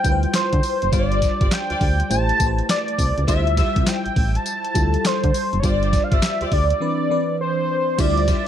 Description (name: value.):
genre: R&B, new jack swing.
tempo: 102 BPM.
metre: 4/4.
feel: swing 64% on 16ths.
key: D dorian.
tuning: A4 = 440 Hz.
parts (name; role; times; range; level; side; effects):
octave-doubled lead; melody; 0.0-8.5 s; C5 to A5; -22 LUFS; equal; chorus, phaser.
FM electric piano with soft pad layer; accompaniment; 0.0-8.5 s; E3 to C5; -26 LUFS; equal; chorus, phaser.
solid FM bass; bass; 0.0-8.3 s; F#1 to D3; -22 LUFS; equal; none.
clean 12-bit digital drum machine; drums; 0.0-8.5 s; crash cymbal, handclaps, hi-hat, kick drum, snare drum, tambourine; -21 LUFS; equal; none.
warm studio string section; stabs; 0.9-8.5 s; F4 to E5; -31 LUFS; equal; digital delay.
room: light reverb.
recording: dark, warm production.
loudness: -17 LUFS.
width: side -10 dB against mid.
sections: 0.0-8.0 A section.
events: break 6.8-8.0.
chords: 0.0 Dm11; 0.9 G7sus4; 2.1 Am7; 3.3 Dm11; 5.6 G7sus4; 6.8 Cmaj9.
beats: 0.34 | 0.93 1.51 2.10 2.69 | 3.28 3.87 4.46 5.04 | 5.63 6.22 6.81 7.40 | 7.99.